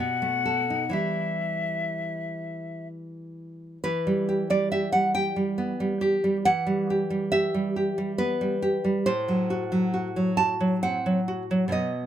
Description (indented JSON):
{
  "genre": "romantic duo for flute and classical guitar",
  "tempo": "61-70 BPM",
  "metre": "3/4",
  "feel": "rubato",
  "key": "E minor",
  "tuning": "A4 = 440 Hz",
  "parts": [
    { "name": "hollow silver concert flute", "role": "melody", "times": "0.0-2.9 s", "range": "E5 to F#5", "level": "-28 LUFS", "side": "left 6 dB", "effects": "none" },
    { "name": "nylon-string guitar", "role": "accompaniment", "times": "0.0-12.1 s", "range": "A2 to A5", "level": "-24 LUFS", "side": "right 1 dB", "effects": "none" }
  ],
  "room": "little or no reverb",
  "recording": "close, detailed microphones",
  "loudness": "-23 LUFS",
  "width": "side -10 dB against mid",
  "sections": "0.0-3.8 A section; 3.8-12.1 A section",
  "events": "none",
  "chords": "0.0 B7; 0.9 Em; 9.1 F#dim/A",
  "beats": "| 0.93 1.91 2.87 | 3.83 4.71 5.58 | 6.45 7.32 8.19 | 9.06 9.93 10.83 | 11.74"
}